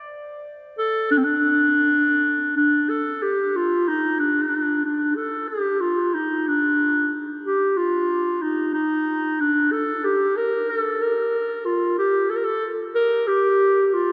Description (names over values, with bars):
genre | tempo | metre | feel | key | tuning
turkish | free time | none | none | G makam nihavent | A4 = 440 Hz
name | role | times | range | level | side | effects
warm clarinet | solo | 0.8-14.1 s | C4 to Bb4 | -22 LUFS | equal | none
room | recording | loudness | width
wet cathedral reverb, RT60 5.1 s | recorded in a church or concert hall, nothing above 7.6 kHz | -21 LUFS | mono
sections
0.0-2.9 A section; 2.9-14.1 B section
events
none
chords
none